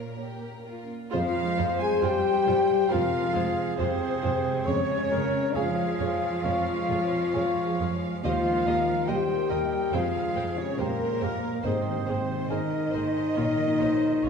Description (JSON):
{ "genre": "cinematic, emotional film score for orchestra", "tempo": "68 BPM", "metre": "4/4", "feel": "rubato", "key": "F minor", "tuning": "A4 = 440 Hz", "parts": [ { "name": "warm symphonic violin section", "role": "melody", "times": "0.0-14.3 s", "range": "Bb4 to Eb5", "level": "-40 LUFS", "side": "left 1 dB", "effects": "none" }, { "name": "rich symphonic violin section", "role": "second line", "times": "0.0-14.3 s", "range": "F4 to Ab5", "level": "-37 LUFS", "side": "equal", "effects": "none" }, { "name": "felt-muted upright piano", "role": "accompaniment", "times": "0.0-14.3 s", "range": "Eb2 to Ab5", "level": "-36 LUFS", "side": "left 1 dB", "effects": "none" }, { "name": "warm symphonic viola section", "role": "accompaniment", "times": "0.0-14.3 s", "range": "G3 to G5", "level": "-38 LUFS", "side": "right 4 dB", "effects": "none" }, { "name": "concert harp", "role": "arpeggios", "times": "0.0-14.3 s", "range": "Ab2 to Eb6", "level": "-38 LUFS", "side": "left 6 dB", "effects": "none" }, { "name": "rich symphonic cello section", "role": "bass", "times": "0.0-14.3 s", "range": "Bb2 to Ab3", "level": "-34 LUFS", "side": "right 5 dB", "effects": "none" }, { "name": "dark cor anglais", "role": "second line", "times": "1.1-14.3 s", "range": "Ab4 to F5", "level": "-36 LUFS", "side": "right 6 dB", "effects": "none" }, { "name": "silver concert flute", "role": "second line", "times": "1.1-14.3 s", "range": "Bb4 to Ab5", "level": "-33 LUFS", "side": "equal", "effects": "none" }, { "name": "dark French horn section", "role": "sustained chords", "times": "1.1-14.3 s", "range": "Bb3 to Ab4", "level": "-27 LUFS", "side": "left 3 dB", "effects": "none" }, { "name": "warm symphonic double bass section", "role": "bass", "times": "1.1-14.3 s", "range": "Ab1 to F2", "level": "-36 LUFS", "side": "right 5 dB", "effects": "none" } ], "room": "wet concert hall reverb, RT60 2.0 s", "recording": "minimal, uncompressed stereo recording", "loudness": "-24 LUFS", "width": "side -6 dB against mid", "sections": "0.0-1.1 A section; 1.1-14.3 A section", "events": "none", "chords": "0.0 Bbm; 1.1 Fmadd9; 4.7 Db/F; 8.2 Eb; 9.9 Fmadd9; 11.6 Abadd9; 13.4 Bbm" }